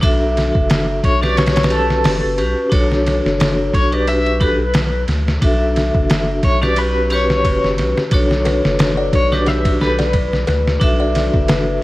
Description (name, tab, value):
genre	trip hop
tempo	89 BPM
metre	4/4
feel	swing 55% on 16ths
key	B minor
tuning	A4 = 441 Hz
part	vibraphone with hard mallets	accompaniment	0.0-11.8 s	C#4 to E5	-19 LUFS	equal	harmonic tremolo, tape echo
part	soft dub sub bass	bass	0.0-11.8 s	F#1 to D2	-20 LUFS	equal	none
part	trip hop sampler-style drum kit	drums	0.0-11.7 s	hi-hat, kick drum, ride cymbal, snare drum	-18 LUFS	equal	small room ambience
part	electric guitar at the edge of break-up	melody	1.0-10.4 s	A4 to E5	-22 LUFS	left 1 dB	tremolo, tape echo
part	music box	arpeggios	8.5-11.6 s	B4 to D5	-23 LUFS	left 3 dB	tape echo
room	light reverb, digital ambience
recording	vinyl crackle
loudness	-13 LUFS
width	side -18 dB against mid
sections	0.0-11.8 A section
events	none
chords	0.0 Bm7; 1.4 A13/B; 2.7 Bm7; 4.1 Bmadd11; 5.4 Bm7; 6.8 Gmaj7#11; 8.1 Bm7; 9.5 Bmadd11; 10.8 Bm7